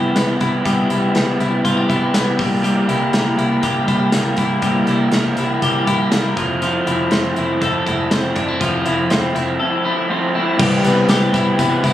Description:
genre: jangly indie pop.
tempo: 121 BPM.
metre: 4/4.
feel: straight.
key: C major.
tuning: A4 = 441 Hz.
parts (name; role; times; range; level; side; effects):
crunchy overdriven guitar; accompaniment; 0.0-11.9 s; C3 to B4; -19 LUFS; right 3 dB; none.
twelve-string electric guitar; arpeggios; 0.0-11.9 s; F3 to A4; -19 LUFS; left 4 dB; tape echo.
vintage muted fingered electric bass; bass; 0.0-11.9 s; F1 to C2; -25 LUFS; equal; none.
modern studio drum kit; drums; 0.2-11.9 s; crash cymbal, hi-hat, kick drum, snare drum; -22 LUFS; equal; none.
tambourine; percussion; 10.6-11.9 s; none; -34 LUFS; right 3 dB; none.
room: light reverb.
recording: recorded on a phone in the room, studio reverb, compression.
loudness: -15 LUFS.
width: side -12 dB against mid.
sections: 0.0-10.6 A section; 10.6-11.9 B section.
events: none.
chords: 0.0 Cmaj7; 2.4 C7; 6.4 Fmaj7; 10.6 Cmaj7.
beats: 0.16 | 0.66 1.15 1.65 2.15 | 2.64 3.14 3.64 4.13 | 4.63 5.13 5.62 6.12 | 6.62 7.12 7.61 8.11 | 8.61 9.11 9.60 10.10 | 10.60 11.09 11.59.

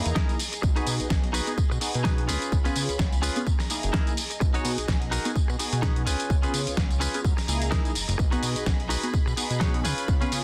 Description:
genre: filtered disco house.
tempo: 127 BPM.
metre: 4/4.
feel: swing 56% on 16ths.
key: B major.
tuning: A4 = 439 Hz.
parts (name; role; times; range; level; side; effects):
funky polysynth comp; accompaniment; 0.0-10.4 s; A#3 to G#4; -35 LUFS; equal; chorus, tremolo, phaser, vintage 12-bit sampler grit, sidechain pumping.
dark studio violin section; sustained chords; 0.0-10.4 s; E#4 to B5; -42 LUFS; equal; sidechain pumping.
fat analog bass; bass; 0.1-10.4 s; F#1 to C#3; -32 LUFS; equal; tube saturation, sidechain pumping.
dusty soul sampler-style drum kit; drums; 0.1-10.4 s; hi-hat, snare drum, tambourine; -33 LUFS; equal; sidechain pumping on perc, studio reverb, sidechain pumping on hats.
direct-recorded clean electric guitar; riff; 0.2-10.4 s; C#4 to C#5; -34 LUFS; equal; vintage 12-bit sampler grit, sidechain pumping.
electronic kick drum; drums; 0.2-10.2 s; none; -28 LUFS; equal; studio reverb.
room: little or no reverb.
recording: dense, heavily limited modern master.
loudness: -26 LUFS.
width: mono.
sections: 0.0-10.4 A section.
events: none.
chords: 0.0 F#13 (rootless); 0.6 B6; 2.3 C#7; 3.5 F#13; 4.4 B6; 6.1 C#7; 7.2 F#13; 8.2 B6; 9.8 C#7.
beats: 0.16 | 0.63 1.10 1.58 2.05 | 2.52 3.00 3.47 3.94 | 4.41 4.88 5.36 5.83 | 6.30 6.78 7.25 7.72 | 8.19 8.66 9.14 9.61 | 10.08.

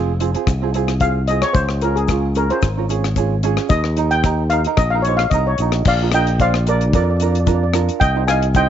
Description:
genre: calypso.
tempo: 112 BPM.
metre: 4/4.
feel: swing 54% on 16ths.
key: unclear.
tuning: A4 = 440 Hz.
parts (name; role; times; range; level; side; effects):
tenor ukulele; accompaniment; 0.0-8.7 s; C4 to Eb5; -22 LUFS; right 11 dB; none.
modern bright fingered electric bass; bass; 0.0-8.7 s; F1 to F2; -18 LUFS; equal; none.
deep reggae drum kit; drums; 0.2-8.7 s; crash cymbal, hi-hat, kick drum, rim click; -20 LUFS; left 3 dB; none.
egg shaker; percussion; 0.2-8.7 s; none; -41 LUFS; left 15 dB; none.
steel pan; melody; 1.0-8.7 s; Ab4 to Ab5; -20 LUFS; left 2 dB; none.
room: light reverb, small room ambience.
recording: 1960s-style stereo with parts hard left and right, nothing above 7.6 kHz, faint mains hum.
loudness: -15 LUFS.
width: side -10 dB against mid.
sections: 0.0-5.9 A section; 5.9-8.7 B section.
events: steel pan solo 0.0-5.9.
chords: 0.0 Fm; 1.6 Dbmaj7; 3.7 Eb; 5.9 Bb; 8.0 Cm.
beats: 0.48 1.02 | 1.55 2.09 2.63 3.17 | 3.70 4.24 4.78 5.32 | 5.85 6.39 6.93 7.47 | 8.01 8.54.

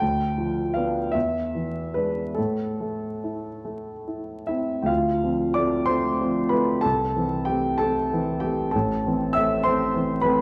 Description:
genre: classical, romantic nocturne for solo piano.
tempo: 46-67 BPM (dotted quarters).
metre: 12/8.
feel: rubato.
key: A minor.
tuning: A4 = 435 Hz.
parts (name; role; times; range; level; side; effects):
warm grand piano; solo; 0.0-10.4 s; A1 to E6; -24 LUFS; equal; none.
room: moderate concert hall reverb, RT60 2.4 s.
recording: vinyl crackle.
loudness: -24 LUFS.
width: mono.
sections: 0.0-4.9 A section; 4.9-10.4 B section.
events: none.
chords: 0.0 Bdim/D; 1.1 E7; 2.4 Am; 4.9 Dm7; 6.8 Am/C; 8.7 Am.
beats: | 0.01 1.14 2.37 3.65 | 4.89 5.88 6.85 7.82 | 8.74 9.64.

